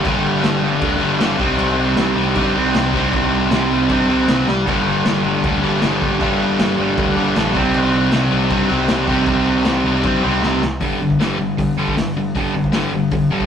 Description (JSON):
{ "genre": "punk rock", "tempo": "156 BPM", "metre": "4/4", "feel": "straight", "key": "G minor", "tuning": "A4 = 436 Hz", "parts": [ { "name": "distorted electric guitar", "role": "riff", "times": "0.0-13.5 s", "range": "G2 to C4", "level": "-20 LUFS", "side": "right 4 dB", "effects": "distortion" }, { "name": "distorted electric guitar", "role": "riff", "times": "0.0-10.6 s", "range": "G2 to C4", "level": "-20 LUFS", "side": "equal", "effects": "overdrive" }, { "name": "sludgy distorted guitar", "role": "riff", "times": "0.0-13.5 s", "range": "G2 to Eb4", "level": "-21 LUFS", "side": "left 6 dB", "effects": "overdrive" }, { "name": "growling picked electric bass", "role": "bass", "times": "0.0-13.5 s", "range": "G1 to G2", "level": "-26 LUFS", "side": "right 1 dB", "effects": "overdrive" }, { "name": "raw garage drum kit", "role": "drums", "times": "0.1-13.5 s", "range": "crash cymbal, hi-hat, kick drum, snare drum", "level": "-22 LUFS", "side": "equal", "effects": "none" } ], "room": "moderate stone room reverb, RT60 1.4 s", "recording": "rough rehearsal-room recording, tube saturation", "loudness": "-15 LUFS", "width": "side -8 dB against mid", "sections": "0.0-10.8 A section; 10.8-13.5 B section", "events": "drum fill 4.5, 10.4-10.8", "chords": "0.0 Gm; 1.4 Cm; 4.7 Gm; 7.5 Cm; 10.8 G5" }